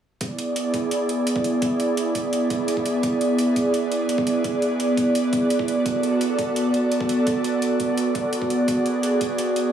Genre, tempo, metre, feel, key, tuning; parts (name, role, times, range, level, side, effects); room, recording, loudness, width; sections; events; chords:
liquid drum and bass; 170 BPM; 4/4; straight; A4 = 440 Hz
airy breathy pad; sustained chords; 0.3-9.7 s; B3 to D5; -20 LUFS; right 1 dB; chorus
electronic hi-hat; drums; 0.2-9.6 s; -33 LUFS; right 2 dB; overdrive
electronic kick drum; drums; 0.2-9.3 s; -30 LUFS; right 1 dB; overdrive, high-pass filter on kick
wet recital hall reverb, RT60 1.5 s; studio reverb; -20 LUFS; side -9 dB against mid
0.2-9.7 A section
0.2 E7; 5.7 D6